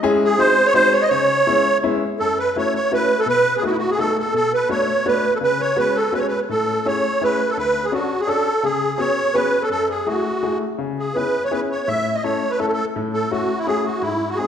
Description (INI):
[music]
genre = musette waltz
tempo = 167 BPM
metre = 3/4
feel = straight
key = F# minor, C# minor from 10.8 s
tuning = A4 = 440 Hz
[part]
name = clear upright piano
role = accompaniment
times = 0.0-14.5 s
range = D2 to A4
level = -23 LUFS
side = left 4 dB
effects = none
[part]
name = musette accordion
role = melody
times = 0.2-14.5 s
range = E4 to E5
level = -18 LUFS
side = right 1 dB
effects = none
[sound]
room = wet concert hall reverb, RT60 1.7 s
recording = recorded in a church or concert hall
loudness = -17 LUFS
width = side -8 dB against mid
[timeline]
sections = 0.0-2.2 A section; 2.2-10.8 B section; 10.8-14.5 A section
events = none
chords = 0.0 C#m/G#; 0.4 G#7; 1.1 C#m7; 2.2 F#m7; 3.3 B7; 4.3 Bm7; 5.4 C#7sus4; 6.5 Amaj7; 7.6 Dmaj7; 8.6 C#7sus4; 9.7 F#m9; 10.8 C#m7; 11.9 A; 13.0 F#m7/A